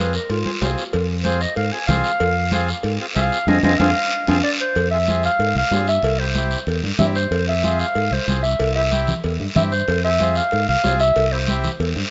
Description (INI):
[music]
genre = latin, cumbia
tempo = 188 BPM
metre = 4/4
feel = straight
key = F minor, F harmonic minor from 4.8 s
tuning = A4 = 440 Hz
[part]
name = warm clarinet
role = melody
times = 0.0-11.8 s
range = F4 to Ab5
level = -23 LUFS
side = equal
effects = none
[part]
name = accordion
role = accompaniment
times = 0.0-11.7 s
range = C4 to Ab4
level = -31 LUFS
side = equal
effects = none
[part]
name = fingered electric bass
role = bass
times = 0.0-12.0 s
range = C2 to Ab2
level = -25 LUFS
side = equal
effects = none
[part]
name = guiro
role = percussion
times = 0.1-12.1 s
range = none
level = -31 LUFS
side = equal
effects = none
[part]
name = cowbell and timbales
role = percussion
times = 0.3-12.0 s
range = none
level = -27 LUFS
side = equal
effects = none
[part]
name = congas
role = percussion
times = 0.5-12.1 s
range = none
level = -27 LUFS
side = equal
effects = none
[sound]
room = light reverb, small room reverb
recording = rough home demo mix, nothing above 7.8 kHz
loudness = -19 LUFS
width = mono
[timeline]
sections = 0.0-4.8 A section; 4.8-12.1 B section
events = clarinet solo 0.0-4.8; band accent 3.5-4.8; drum fill 4.1-4.8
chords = 0.0 Fm; 6.0 C; 7.3 Fm; 8.6 C; 9.9 Fm; 11.2 C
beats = 0.30 0.62 | 0.94 1.25 1.57 1.89 | 2.21 2.53 2.85 3.17 | 3.49 3.81 4.12 4.44 | 4.76 5.08 5.40 5.72 | 6.04 6.36 6.68 7.00 | 7.32 7.64 7.96 8.28 | 8.60 8.92 9.24 9.56 | 9.88 10.20 10.52 10.84 | 11.16 11.48 11.80